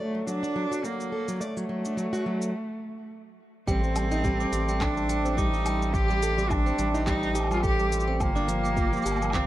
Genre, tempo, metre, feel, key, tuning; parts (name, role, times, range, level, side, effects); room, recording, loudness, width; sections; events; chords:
folktronica; 106 BPM; 4/4; swing 56% on 16ths; A4 = 440 Hz
clear cello; melody; 0.0-9.5 s; A3 to G4; -30 LUFS; equal; tape echo
pedal harmonium; sustained chords; 0.0-9.5 s; D2 to Bb4; -35 LUFS; left 1 dB; vintage 12-bit sampler grit
picked plugged-in steel-string acoustic guitar; arpeggios; 0.0-9.5 s; F3 to D5; -32 LUFS; right 1 dB; vintage 12-bit sampler grit
organic electronic drum kit; drums; 0.3-9.5 s; cabasa, handclaps, hi-hat, woodblock; -36 LUFS; left 1 dB
glockenspiel with hard plastic mallets; second line; 3.7-9.5 s; G5 to D6; -33 LUFS; right 4 dB; tape echo
round analog bass; bass; 3.7-9.5 s; G1 to A1; -29 LUFS; equal
electronic kick drum; drums; 3.7-9.5 s; -29 LUFS; equal
light reverb; -24 LUFS; side -14 dB against mid
0.0-3.7 A section; 3.7-9.5 B section
break 2.5-3.7
0.0 D; 3.7 Am7b5; 8.2 Gm7